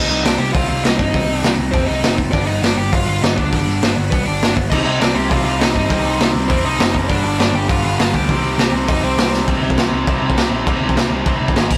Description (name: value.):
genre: punk rock.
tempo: 202 BPM.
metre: 4/4.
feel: straight.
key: C harmonic minor.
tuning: A4 = 440 Hz.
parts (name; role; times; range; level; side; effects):
dark smooth lead guitar; melody; 0.0-9.3 s; B3 to G5; -24 LUFS; equal; overdrive.
distorted electric guitar; riff; 0.0-11.7 s; G2 to Eb4; -26 LUFS; equal; distortion.
overdriven picked electric bass; bass; 0.0-11.8 s; F1 to C3; -24 LUFS; equal; none.
raw garage drum kit; drums; 0.3-11.8 s; crash cymbal, hi-hat, kick drum, snare drum; -20 LUFS; equal; none.
distorted electric guitar; riff; 4.7-11.7 s; G2 to C4; -25 LUFS; equal; overdrive.
room: light reverb.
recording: rough rehearsal-room recording, warm saturation.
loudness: -17 LUFS.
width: mono.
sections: 0.0-9.5 A section; 9.5-11.8 B section.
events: drum fill 9.3.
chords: 0.0 Cm; 2.3 G; 4.7 Cm; 7.1 G; 8.3 Cm; 11.6 Ab5.